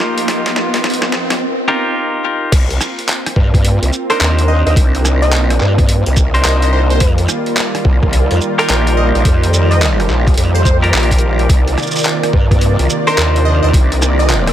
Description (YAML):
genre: glitch hop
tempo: 107 BPM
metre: 4/4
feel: swing 64% on 16ths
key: C minor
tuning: A4 = 441 Hz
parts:
  - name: warm analog pad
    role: sustained chords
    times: 0.0-14.5 s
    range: C3 to Eb5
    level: -22 LUFS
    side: right 2 dB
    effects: chorus, tremolo, vintage 12-bit sampler grit, sidechain pumping
  - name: clean electric guitar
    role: stabs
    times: 0.0-14.5 s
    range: D4 to C5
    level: -20 LUFS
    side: left 1 dB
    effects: sidechain pumping, ping-pong delay
  - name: boom bap sampler-style drum kit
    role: drums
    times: 0.0-14.5 s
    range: crash cymbal, handclaps, hi-hat, rim click, shaker, snare drum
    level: -19 LUFS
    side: equal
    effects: high-pass filter on snare, high-pass filter on hats, high-pass filter on cymbals, high-pass filter on perc
  - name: riser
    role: sound effects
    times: 0.0-1.4 s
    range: none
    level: -20 LUFS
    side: equal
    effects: none
  - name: ethereal airy pad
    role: texture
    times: 0.0-14.5 s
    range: F4 to Eb5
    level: -23 LUFS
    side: equal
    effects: ensemble chorus, built-in reverb, sidechain pumping
  - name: growl bass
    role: bass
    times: 2.5-14.5 s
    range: Bb1 to G2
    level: -13 LUFS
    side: equal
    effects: chorus, tube saturation
  - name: electronic kick drum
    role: drums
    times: 2.5-13.9 s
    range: none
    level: -13 LUFS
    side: equal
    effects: none
  - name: plucky unison lead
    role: melody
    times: 4.1-14.4 s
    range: Bb4 to Eb5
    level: -22 LUFS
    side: equal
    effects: ping-pong delay
room: little or no reverb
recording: none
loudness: -11 LUFS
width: side -11 dB against mid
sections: 0.0-2.5 A section; 2.5-14.5 B section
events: build-up 0.0-2.5; drum fill 0.0-1.4; riser 0.0-1.4; filter sweep on analog synth pad 0.0-2.5; drop 2.5-14.5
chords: 0.0 F9sus4; 2.5 Cm9; 7.0 F9sus4; 11.5 Cm9